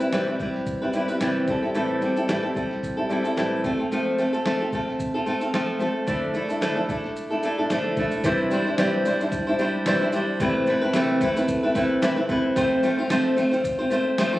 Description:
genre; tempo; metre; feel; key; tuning
acoustic pop; 111 BPM; 4/4; swing 55% on 16ths; C major; A4 = 439 Hz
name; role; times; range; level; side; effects
flamenco guitar; accompaniment; 0.0-14.4 s; A2 to C5; -21 LUFS; equal; none
dusty soul sampler-style drum kit; drums; 0.0-14.3 s; kick drum, shaker, snare drum; -32 LUFS; equal; none
room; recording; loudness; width
light reverb; recorded on a phone in the room, studio reverb; -21 LUFS; side -16 dB against mid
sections
0.0-8.2 A section; 8.2-14.4 B section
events
none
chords
0.0 Cmaj7; 1.5 Am7; 3.6 F; 6.1 Dmadd9; 8.2 Cadd9; 10.4 Amadd9/C; 12.6 F

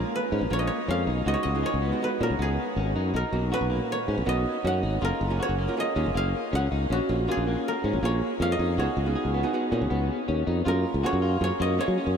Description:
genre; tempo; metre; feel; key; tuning
progressive instrumental, progressive; 160 BPM; 5/4; straight; unclear; A4 = 440 Hz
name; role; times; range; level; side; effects
koto; melody; 0.0-12.2 s; F4 to Gb5; -30 LUFS; equal; analog delay
archtop guitar, miked and amplified; accompaniment; 0.0-12.1 s; Bb2 to Bb4; -32 LUFS; right 3 dB; none
electric guitar at the edge of break-up; arpeggios; 0.0-12.2 s; Bb3 to Ab4; -32 LUFS; left 2 dB; analog chorus, analog delay
modern bright fingered electric bass; bass; 0.0-12.2 s; Gb1 to Gb3; -26 LUFS; equal; none
room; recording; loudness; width
wet huge ambient reverb, RT60 7.4 s; dreamy mix soaked in reverb; -24 LUFS; side -7 dB against mid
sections
0.0-10.7 A section; 10.7-12.2 B section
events
none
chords
0.0 Bbm7; 1.3 Db7sus4; 3.1 Cbmaj7; 5.0 Gbmaj7; 6.9 Bbm7; 8.8 Db7sus4; 10.7 Gbmaj7

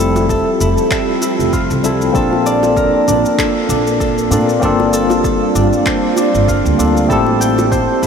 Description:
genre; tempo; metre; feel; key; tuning
sunset chillout; 97 BPM; 4/4; swing 56% on 16ths; F major; A4 = 440 Hz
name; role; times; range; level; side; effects
tine electric piano; accompaniment; 0.0-8.1 s; F3 to A5; -16 LUFS; moving between left 3 dB and right 4 dB; medium stereo tremolo, auto-pan, low-pass filter, tape echo
soft string machine; sustained chords; 0.2-8.1 s; F3 to E5; -20 LUFS; right 2 dB; ensemble chorus
Celtic harp; arpeggios; 0.0-8.1 s; D4 to G5; -18 LUFS; left 2 dB; low-pass filter, tape echo
upright bass; bass; 0.0-8.1 s; F1 to Bb2; -19 LUFS; equal; none
electronic shaker and handclaps; drums; 0.2-8.1 s; none; -25 LUFS; equal; none
bongos; percussion; 0.2-7.7 s; none; -28 LUFS; right 3 dB; none
electronic kick drum; drums; 0.3-7.9 s; none; -22 LUFS; right 1 dB; none
room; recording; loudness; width
wet huge ambient reverb, RT60 7.6 s; dreamy mix soaked in reverb; -12 LUFS; side -6 dB against mid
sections
0.0-8.1 A section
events
filter sweep on tine electric piano 0.0-8.1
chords
0.0 Fmaj9; 2.2 Bbmaj9; 4.6 Gm11; 7.1 Am7

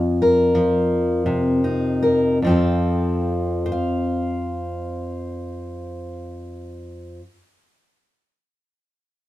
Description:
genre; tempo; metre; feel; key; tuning
acoustic folk duo or small band; 73-91 BPM; 4/4; straight; F mixolydian; A4 = 440 Hz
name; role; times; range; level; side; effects
bluegrass banjo; melody; 0.0-1.6 s; F5; -47 LUFS; right 1 dB; none
fingerpicked steel-string acoustic guitar; accompaniment; 0.0-7.2 s; F2 to F5; -19 LUFS; left 1 dB; none
room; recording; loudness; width
light reverb; minimal, uncompressed stereo recording; -18 LUFS; side -15 dB against mid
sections
0.0-2.4 A section; 2.4-5.7 B section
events
slowing down 0.0-2.4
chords
0.0 F7sus4; 2.4 F

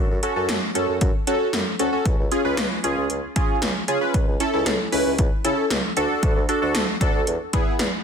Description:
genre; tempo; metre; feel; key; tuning
synth-pop; 115 BPM; 4/4; straight; F# minor; A4 = 439 Hz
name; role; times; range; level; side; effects
mellow bassoon; bass; 0.0-7.9 s; C#2 to F#3; -28 LUFS; equal; none
warm analog keys; accompaniment; 0.2-7.7 s; B3 to B4; -23 LUFS; equal; chorus, phaser
80s electronic pad drums; drums; 0.2-7.9 s; hi-hat, kick drum, snare drum; -22 LUFS; equal; none
room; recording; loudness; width
light reverb, digital ambience; dense, heavily limited modern master; -19 LUFS; side -7 dB against mid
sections
0.0-8.0 A section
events
none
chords
0.0 F#m; 2.1 C#; 4.1 A/C#; 6.0 D; 7.3 E

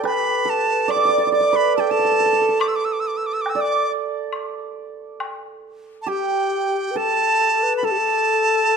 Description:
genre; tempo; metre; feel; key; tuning
chinese traditional, Chinese chamber ensemble; 70 BPM; 4/4; rubato; unclear; A4 = 440 Hz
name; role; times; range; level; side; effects
hammered dulcimer; second line; 0.0-8.8 s; G4 to D5; -23 LUFS; right 7 dB; none
mellow xiao; second line; 0.0-8.8 s; G4 to D5; -23 LUFS; left 9 dB; none
bright reedy dizi; melody; 0.1-8.8 s; G5 to E6; -20 LUFS; right 2 dB; none
woodblock; percussion; 0.1-5.4 s; none; -29 LUFS; left 3 dB; none
room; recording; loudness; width
light reverb; close, detailed microphones; -17 LUFS; side -6 dB against mid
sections
0.0-6.1 A section; 6.1-8.8 B section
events
none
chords
none

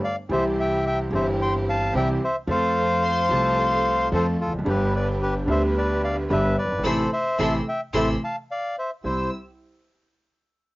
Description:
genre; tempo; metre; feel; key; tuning
tango; 110 BPM; 4/4; rubato; C major; A4 = 437 Hz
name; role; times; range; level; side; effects
bandoneon; melody; 0.0-9.3 s; F4 to C6; -24 LUFS; left 1 dB; cassette tape
clear concert grand piano; accompaniment; 0.3-9.3 s; F#1 to A4; -24 LUFS; equal; cassette tape
rich symphonic string section; stabs; 0.3-9.3 s; C4 to C5; -34 LUFS; right 2 dB; cassette tape
upright bass; bass; 0.3-9.3 s; E1 to F2; -30 LUFS; right 1 dB; tube saturation
bright clarinet; second line; 3.0-9.3 s; G4 to C5; -33 LUFS; right 3 dB; none
rich studio violin section; second line; 3.0-9.3 s; A5 to E6; -32 LUFS; left 2 dB; cassette tape
room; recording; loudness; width
light reverb; home recording on cassette, nothing above 7.5 kHz; -21 LUFS; side -20 dB against mid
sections
0.0-9.0 A section; 9.0-10.8 B section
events
band accent 6.8-9.0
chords
0.3 C; 2.5 F; 4.7 G; 6.8 Amadd9; 8.5 Cadd9; 9.0 C

